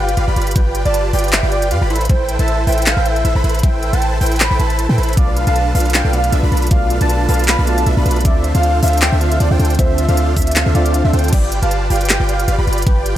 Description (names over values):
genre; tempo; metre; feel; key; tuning
future bass; 156 BPM; 4/4; swing 55% on 16ths, half-time; unclear; A4 = 440 Hz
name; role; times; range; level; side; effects
warm velvety synth lead; melody; 0.0-13.1 s; B4 to B5; -23 LUFS; right 1 dB; chorus, sidechain pumping, dub echo
airy dreamy lead; arpeggios; 0.0-13.1 s; D5 to B5; -26 LUFS; left 1 dB; chorus, sidechain pumping, dub echo
supersaw chords; riff; 0.0-13.1 s; D4 to B5; -21 LUFS; right 1 dB; sidechain pumping
warm 808-style bass; bass; 0.0-13.1 s; G1 to A2; -16 LUFS; equal; tube saturation, sidechain pumping
sub drop; sound effects; 0.0-0.6 s; none; barely audible; none; none
trap drum kit; drums; 0.1-13.1 s; crash cymbal, handclaps, hi-hat; -20 LUFS; equal; none
electronic kick drum; drums; 0.6-13.0 s; none; -15 LUFS; equal; none
tine electric piano; accompaniment; 5.2-11.3 s; B2 to E5; -24 LUFS; right 1 dB; medium stereo tremolo, sidechain pumping, dub echo
room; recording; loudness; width
digital ambience; none; -12 LUFS; side -12 dB against mid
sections
0.0-11.3 A section; 11.3-13.2 A section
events
drop 0.0-11.3, 11.3-13.2; impact 0.0-0.6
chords
0.0 G7; 1.9 Am9; 5.2 Bm7b5; 8.2 Dm9; 11.3 G7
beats
0.17 | 0.56 0.94 1.33 1.71 | 2.10 2.48 2.87 3.25 | 3.63 4.02 4.40 4.79 | 5.17 5.56 5.94 6.33 | 6.71 7.10 7.48 7.87 | 8.25 8.63 9.02 9.40 | 9.79 10.17 10.56 10.94 | 11.33 11.71 12.10 12.48 | 12.87